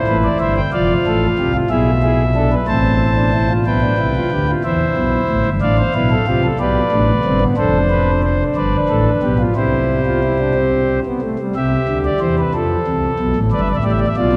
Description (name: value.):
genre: classical, baroque-style 4-part fugue for pipe organ.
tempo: 61 BPM (dotted quarters).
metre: 6/8.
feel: straight.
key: C major from 7.6 s.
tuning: A4 = 440 Hz.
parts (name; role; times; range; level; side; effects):
pipe organ, principal; solo; 0.0-14.4 s; F1 to A5; -16 LUFS; equal; none.
room: wet cathedral reverb, RT60 4.4 s.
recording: dark, warm production.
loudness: -16 LUFS.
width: mono.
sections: 0.0-3.7 A section; 3.7-11.6 B section; 11.6-14.4 C section.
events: none.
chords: 0.0 Am; 0.7 Dm/F; 1.7 E7/B; 2.7 Am; 3.7 G/B; 4.7 C; 5.6 F/A; 6.6 G; 7.6 Dm/F; 8.6 G7; 9.6 C; 12.5 F; 13.5 G7.